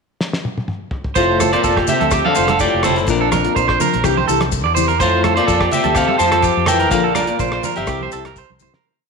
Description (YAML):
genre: highlife guitar band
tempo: 125 BPM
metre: 4/4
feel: swing 53% on 16ths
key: F major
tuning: A4 = 440 Hz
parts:
  - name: cloth-damped thuddy drum kit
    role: drums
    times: 0.2-8.8 s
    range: hi-hat, kick drum, rim click, snare drum, toms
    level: -24 LUFS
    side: left 1 dB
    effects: none
  - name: electric guitar at the edge of break-up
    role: melody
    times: 1.2-8.5 s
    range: D4 to A5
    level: -19 LUFS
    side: left 1 dB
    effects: spring reverb
  - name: breathy trombone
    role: second line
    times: 1.2-8.5 s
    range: F2 to F3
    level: -23 LUFS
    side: left 10 dB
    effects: slapback echo
  - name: nylon-string guitar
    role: accompaniment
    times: 1.2-8.8 s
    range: E3 to G4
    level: -25 LUFS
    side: left 13 dB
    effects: none
  - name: electric guitar at the edge of break-up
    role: arpeggios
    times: 1.2-8.8 s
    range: G4 to D5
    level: -18 LUFS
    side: right 10 dB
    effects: slapback echo
  - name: fingered electric bass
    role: bass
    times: 1.2-8.7 s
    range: F1 to F2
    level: -23 LUFS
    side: left 1 dB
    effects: none
  - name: maracas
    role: percussion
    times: 1.2-8.7 s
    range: none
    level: -29 LUFS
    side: left 16 dB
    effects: none
  - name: congas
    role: percussion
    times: 1.4-8.8 s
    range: none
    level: -26 LUFS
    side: right 10 dB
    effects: none
room: moderate echo chamber reverb, RT60 1.5 s, small room ambience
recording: 1960s-style stereo with parts hard left and right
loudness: -14 LUFS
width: side -4 dB against mid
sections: 0.0-1.2 pickup bar; 1.2-8.8 A section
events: drum fill 0.2-1.2, 8.5-8.8; fade-out 6.9-8.8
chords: 0.0 N.C.; 1.2 F; 3.1 Bb; 4.0 C; 5.0 F; 6.9 Bb; 7.9 C